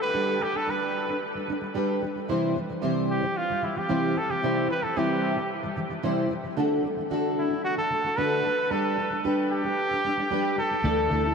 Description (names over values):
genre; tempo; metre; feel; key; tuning
pop; 112 BPM; 4/4; straight; C major; A4 = 441 Hz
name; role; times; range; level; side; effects
clear trumpet; melody; 0.0-11.3 s; E4 to B4; -28 LUFS; right 1 dB; tape echo
fingerpicked plugged-in steel-string acoustic guitar; accompaniment; 0.0-11.3 s; C3 to C5; -26 LUFS; equal; double-tracked left and right
clean electric guitar; arpeggios; 10.8-11.3 s; E3 to A4; -32 LUFS; right 5 dB; none
vintage muted fingered electric bass; bass; 10.8-11.3 s; D2; -28 LUFS; left 1 dB; none
room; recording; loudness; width
wet huge ambient reverb, RT60 7.1 s; dreamy mix soaked in reverb; -24 LUFS; side -5 dB against mid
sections
0.0-10.8 A section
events
none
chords
0.1 G; 2.3 C; 6.6 D; 8.7 G; 10.8 Dsus2